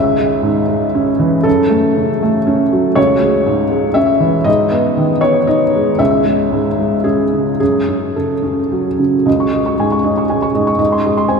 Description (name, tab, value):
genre	neoclassical minimalist piano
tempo	107-121 BPM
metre	3/4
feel	rubato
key	C# minor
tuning	A4 = 440 Hz
part	felt-muted upright piano	solo	0.0-11.4 s	C#2 to C#6	-12 LUFS	equal	slapback echo
room	wet cathedral reverb, RT60 6.2 s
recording	in a vast, echoing space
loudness	-12 LUFS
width	side -5 dB against mid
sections	0.0-9.3 A section; 9.3-11.4 B section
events	none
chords	0.0 C#m; 1.5 F#m; 3.0 C#m; 4.5 G#m; 6.0 C#m; 7.6 F#m; 9.3 C#sus2; 10.8 G#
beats	0.45 0.95 | 1.46 1.96 2.47 | 2.97 3.47 3.97 | 4.47 4.98 5.49 | 6.00 6.52 7.05 | 7.60 8.16 8.71 | 9.26 9.79 10.30 | 10.79 11.30